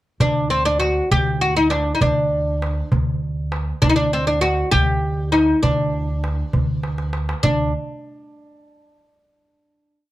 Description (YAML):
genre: Arabic maqam ensemble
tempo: 66 BPM (dotted quarters)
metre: 6/8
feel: straight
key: D maqam hijaz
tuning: A4 = 442 Hz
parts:
  - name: oud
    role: melody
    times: 0.2-7.7 s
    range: C4 to G4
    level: -19 LUFS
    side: equal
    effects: none
  - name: upright bass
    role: bass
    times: 0.2-7.7 s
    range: D2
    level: -23 LUFS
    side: right 1 dB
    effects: none
  - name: darbuka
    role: percussion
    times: 0.2-7.7 s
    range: none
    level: -23 LUFS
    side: equal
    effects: none
room: light reverb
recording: close, detailed microphones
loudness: -17 LUFS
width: side -15 dB against mid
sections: 0.2-7.4 A section; 7.4-9.2 final note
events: drum fill 6.8-7.4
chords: none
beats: | 0.21 1.11 | 2.02 2.92 | 3.82 4.72 | 5.63 6.53 | 7.43